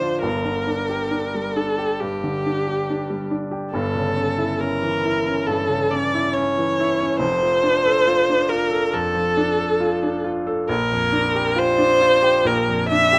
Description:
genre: classical, romantic duo for viola and grand piano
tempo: 68 BPM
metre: 4/4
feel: rubato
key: D minor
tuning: A4 = 440 Hz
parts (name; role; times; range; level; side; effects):
- clear viola; melody; 0.0-13.2 s; G4 to E5; -22 LUFS; equal; none
- clear concert grand piano; accompaniment; 0.0-13.2 s; F1 to A4; -25 LUFS; equal; none
room: moderate stone room reverb, RT60 1.0 s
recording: none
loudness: -21 LUFS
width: mono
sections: 0.0-13.2 A section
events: none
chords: 0.2 Gm; 3.7 A7/G; 7.2 Dm/F; 10.7 Gm7/Bb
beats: | 0.24 1.13 2.01 2.88 | 3.74 4.62 5.49 6.36 | 7.21 8.06 8.93 9.81 | 10.69 11.58 12.47

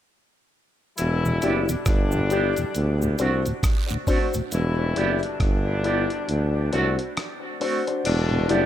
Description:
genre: dub reggae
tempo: 68 BPM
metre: 4/4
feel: swing 60% on 16ths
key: E minor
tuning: A4 = 439 Hz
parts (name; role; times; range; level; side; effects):
- dark horn section; second line; 1.0-8.7 s; B2 to F#4; -29 LUFS; left 3 dB; dub echo
- warm tuba; bass; 1.0-8.7 s; E1 to D2; -24 LUFS; right 1 dB; none
- dusty soul sampler-style drum kit; drums; 1.0-8.7 s; crash cymbal, hi-hat, kick drum, rim click; -25 LUFS; right 1 dB; none
- cabasa and guiro; percussion; 1.0-4.8 s; none; -39 LUFS; right 4 dB; dub echo
- mellow tonewheel organ; accompaniment; 1.2-8.6 s; D2 to G4; -30 LUFS; equal; none
- electric guitar with an envelope filter; accompaniment; 1.4-8.7 s; A3 to G4; -30 LUFS; right 7 dB; tremolo, dub echo
- dark upright piano; stabs; 1.4-8.7 s; D4 to D5; -28 LUFS; left 5 dB; dub echo
room: light reverb, studio ambience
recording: echo-heavy mix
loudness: -21 LUFS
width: side -11 dB against mid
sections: 1.0-8.1 A section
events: part muted 4.5-8.1, 8.1-8.7; kick muted 6.3-8.1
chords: 1.0 Em7; 2.7 D7; 4.5 Em7; 6.3 D7; 8.1 Em7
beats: | 0.98 1.86 2.75 3.63 | 4.51 5.40 6.28 7.17 | 8.05

